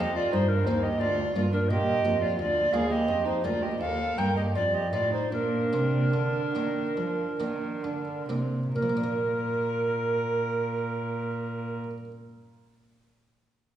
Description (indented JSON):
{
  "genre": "classical, baroque-style sonata movement with continuo",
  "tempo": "65-89 BPM",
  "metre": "4/4",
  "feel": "straight",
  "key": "Bb major",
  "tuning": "A4 = 440 Hz",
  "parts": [
    { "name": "tenor recorder", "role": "melody", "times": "0.0-11.8 s", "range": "Bb4 to G5", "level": "-28 LUFS", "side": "right 1 dB", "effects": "none" },
    { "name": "warm violin", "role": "second line", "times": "0.0-11.8 s", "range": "D4 to Bb4", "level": "-33 LUFS", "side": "right 3 dB", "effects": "none" },
    { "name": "buff-stop harpsichord", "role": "accompaniment", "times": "0.0-12.1 s", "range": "D2 to Bb4", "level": "-33 LUFS", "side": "equal", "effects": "none" },
    { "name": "rich cello", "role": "bass", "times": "0.0-11.8 s", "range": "D2 to F3", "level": "-30 LUFS", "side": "right 1 dB", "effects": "none" }
  ],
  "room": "wet recital hall reverb, RT60 1.7 s",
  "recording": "recorded in a church or concert hall, small room ambience",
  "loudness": "-25 LUFS",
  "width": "side -11 dB against mid",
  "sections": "0.0-8.8 A section; 8.8-12.4 B section",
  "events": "slowing down 1.0-8.8",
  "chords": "0.0 Cm; 1.0 Bb/D; 2.4 Bb7/D; 3.8 Eb; 4.6 F7; 5.3 Bb"
}